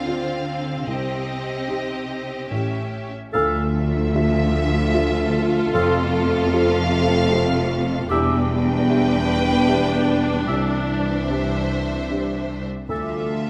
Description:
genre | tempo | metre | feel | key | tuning
cinematic, emotional film score for orchestra | 75 BPM | 3/4 | rubato | C dorian, D dorian from 3.3 s | A4 = 441 Hz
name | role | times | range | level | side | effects
rich symphonic violin section | melody | 0.0-13.5 s | Eb5 to G5 | -32 LUFS | equal | none
rich symphonic violin section | second line | 0.0-13.5 s | F4 to C5 | -31 LUFS | equal | none
felt-muted upright piano | accompaniment | 0.0-13.5 s | A1 to E5 | -30 LUFS | equal | none
rich symphonic viola section | accompaniment | 0.0-13.5 s | C4 to F4 | -32 LUFS | equal | none
rich symphonic cello section | bass | 0.0-13.5 s | C2 to D3 | -26 LUFS | equal | none
mellow clarinet | second line | 3.3-13.2 s | G4 to A4 | -30 LUFS | equal | none
mellow hollow large flute ensemble | second line | 3.3-13.3 s | C6 to E6 | -32 LUFS | equal | none
warm oboe | second line | 3.3-13.2 s | E5 to F5 | -32 LUFS | equal | none
warm French horn section | sustained chords | 3.3-13.5 s | E3 to F4 | -29 LUFS | equal | none
clear symphonic double bass section | bass | 3.3-13.5 s | E1 to D2 | -29 LUFS | equal | none
room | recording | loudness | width
light reverb | close, detailed microphones | -21 LUFS | mono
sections
0.0-3.3 A section; 3.3-13.5 A section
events
none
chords
0.0 Dm7; 0.9 Cm; 2.5 A7; 3.3 Dmadd9; 5.7 F; 8.1 Em7; 10.5 Cadd9; 12.9 Dmadd9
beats
0.07 | 0.87 1.68 2.50 | 3.34 4.14 4.94 | 5.74 6.53 7.32 | 8.10 8.88 9.68 | 10.48 11.29 12.09 | 12.90

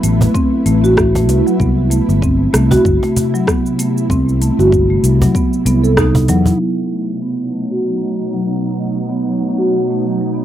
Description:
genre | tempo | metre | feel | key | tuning
organic downtempo | 96 BPM | 4/4 | swing 57% on 16ths | B phrygian dominant | A4 = 441 Hz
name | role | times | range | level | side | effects
ethereal airy pad | sustained chords | 0.0-10.4 s | B2 to B4 | -21 LUFS | right 1 dB | ensemble chorus, built-in reverb, sidechain pumping
marimba with soft mallets | arpeggios | 0.0-10.4 s | F#3 to A4 | -16 LUFS | right 1 dB | low-pass filter, tape echo, plate reverb
sustaining fretless electric bass | bass | 0.0-6.5 s | G1 to E2 | -14 LUFS | left 1 dB | none
afro-pop drum kit | drums | 0.0-10.4 s | hi-hat, rim click, shaker | -20 LUFS | equal | low-pass filter on snare, low-pass filter on perc, low-pass filter on hats
cajon | percussion | 0.2-6.6 s | none | -18 LUFS | right 1 dB | none
electronic kick drum | drums | 0.3-6.1 s | none | -19 LUFS | left 1 dB | none
room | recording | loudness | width
light reverb | rough home demo mix, low-pass filter | -12 LUFS | side -11 dB against mid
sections
0.0-6.6 A section; 6.6-10.4 B section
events
band accent 6.0-6.3; filter sweep on marimba 6.6-10.4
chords
0.0 Am; 1.6 C; 6.6 B7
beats
0.35 0.97 | 1.60 2.22 2.85 3.47 | 4.10 4.72 5.35 5.97 | 6.60 7.22 7.85 8.47 | 9.10 9.72 10.35

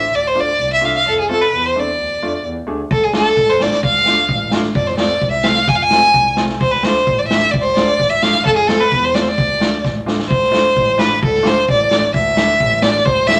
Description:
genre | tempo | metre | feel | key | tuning
klezmer | 130 BPM | 2/4 | straight | D dorian sharp4 | A4 = 440 Hz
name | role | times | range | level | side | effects
clear violin | melody | 0.0-13.4 s | G#4 to G#5 | -16 LUFS | equal | none
warm double bass | bass | 0.1-13.3 s | A1 to F2 | -29 LUFS | equal | none
bright upright piano | accompaniment | 0.3-13.4 s | A3 to G#4 | -27 LUFS | equal | none
street-band drum kit | drums | 2.9-13.4 s | kick drum, snare drum | -21 LUFS | equal | none
room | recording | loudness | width
moderate club reverb, RT60 0.9 s | none | -15 LUFS | mono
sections
0.0-2.9 A section; 2.9-10.3 A section; 10.3-13.4 B section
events
drum fill 9.8-10.3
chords
0.0 Dm; 1.1 F; 2.0 Dm; 4.8 F; 6.6 Dm; 8.5 F; 9.4 Dm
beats
| 0.13 0.59 | 1.05 1.52 | 1.98 2.44 | 2.90 3.37 | 3.83 4.29 | 4.75 5.22 | 5.68 6.14 | 6.61 7.07 | 7.53 7.99 | 8.46 8.92 | 9.38 9.84 | 10.30 10.77 | 11.22 11.69 | 12.14 12.60 | 13.06

